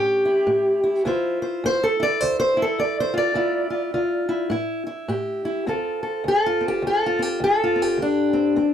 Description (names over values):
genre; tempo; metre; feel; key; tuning
acoustic country blues, solo or duo; 104 BPM; 4/4; swing 61% on 8ths; D minor; A4 = 440 Hz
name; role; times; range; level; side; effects
fingerpicked steel-string acoustic guitar; solo; 0.0-8.7 s; D2 to D5; -19 LUFS; equal; none
room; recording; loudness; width
light reverb; close, detailed microphones; -20 LUFS; side -9 dB against mid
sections
0.0-5.7 A section; 5.7-8.7 B section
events
steel-string acoustic guitar solo 0.0-5.7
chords
0.0 A7; 1.1 Dm9; 4.5 A5; 5.7 Dm7